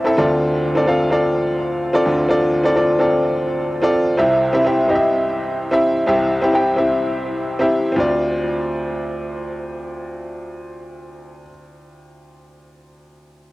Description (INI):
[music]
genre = pop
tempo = 127 BPM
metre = 4/4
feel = straight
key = unclear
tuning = A4 = 441 Hz
[part]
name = bright upright piano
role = solo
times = 0.0-13.5 s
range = A1 to G5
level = -16 LUFS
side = equal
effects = cassette tape, tape echo
[sound]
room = light reverb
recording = home recording on cassette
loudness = -16 LUFS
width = side -19 dB against mid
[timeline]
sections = 0.0-8.0 A section; 8.0-11.7 B section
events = none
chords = 0.2 Dm7; 4.2 C; 8.0 Dm7